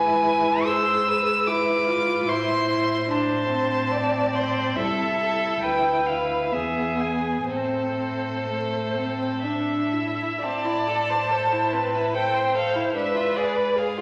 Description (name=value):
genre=classical, slow romantic movement for string quartet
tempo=56-75 BPM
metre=3/4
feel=rubato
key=A minor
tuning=A4 = 442 Hz
part: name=rich violin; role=melody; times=0.0-14.0 s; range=C5 to E6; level=-28 LUFS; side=equal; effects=none
part: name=rich violin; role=second line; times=0.0-14.0 s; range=C4 to D5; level=-29 LUFS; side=equal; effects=none
part: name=rich viola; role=accompaniment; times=0.0-14.0 s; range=A3 to D5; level=-29 LUFS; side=equal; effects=none
part: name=rich cello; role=bass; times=0.0-14.0 s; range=C2 to A2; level=-36 LUFS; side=equal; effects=none
room=wet recital hall reverb, RT60 1.4 s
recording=vinyl crackle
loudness=-24 LUFS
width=mono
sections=0.0-10.4 A section; 10.4-14.0 B section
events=none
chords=0.0 E/G#; 2.3 Am; 4.8 Am/C; 5.6 Bdim/D; 6.5 E; 7.5 Am; 13.0 G#dim7